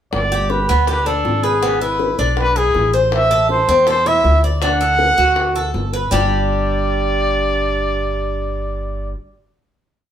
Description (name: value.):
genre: latin, Cuban son and guajira.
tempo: 160 BPM.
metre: 4/4.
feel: straight.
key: G major.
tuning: A4 = 438 Hz.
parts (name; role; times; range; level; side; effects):
breathy trumpet; melody; 0.1-9.1 s; G#4 to F#5; -18 LUFS; equal; none.
upright bass; bass; 0.1-9.1 s; G1 to E2; -21 LUFS; equal; none.
bongos; percussion; 0.1-6.2 s; none; -26 LUFS; left 4 dB; none.
Cuban tres; arpeggios; 0.3-9.1 s; G3 to D5; -20 LUFS; equal; none.
room: wet studio reverb, RT60 0.8 s.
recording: band playing live in one room.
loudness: -14 LUFS.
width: side -9 dB against mid.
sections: 0.1-6.1 verse; 6.1-9.1 final chord.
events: none.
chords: 0.1 G; 1.6 E7/G#; 3.1 Am; 4.6 D; 6.1 G5.